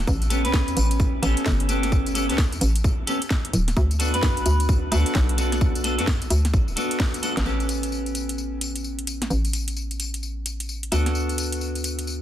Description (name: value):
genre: UK garage, two-step garage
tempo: 130 BPM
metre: 4/4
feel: swing 62% on 16ths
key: unclear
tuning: A4 = 439 Hz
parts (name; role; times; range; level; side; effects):
- hollow knocking FM bass; bass; 0.0-12.2 s; D1 to F#2; -24 LUFS; equal; none
- electronic kick drum; drums; 0.1-7.1 s; none; -23 LUFS; equal; small room ambience
- garage drum kit; drums; 0.1-12.2 s; hi-hat, snare drum, tambourine; -29 LUFS; equal; small room ambience, soft clipping on snare
- clean electric guitar; stabs; 0.3-12.2 s; B3 to B4; -27 LUFS; equal; spring reverb, low-pass filter, dub echo
room: digital ambience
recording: dense, heavily limited modern master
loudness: -21 LUFS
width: side -12 dB against mid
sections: 0.0-7.5 A section; 7.5-12.2 B section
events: drum fill 7.0-7.5; band accent 7.3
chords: 0.1 A9; 3.5 D6; 7.5 A9; 10.9 D6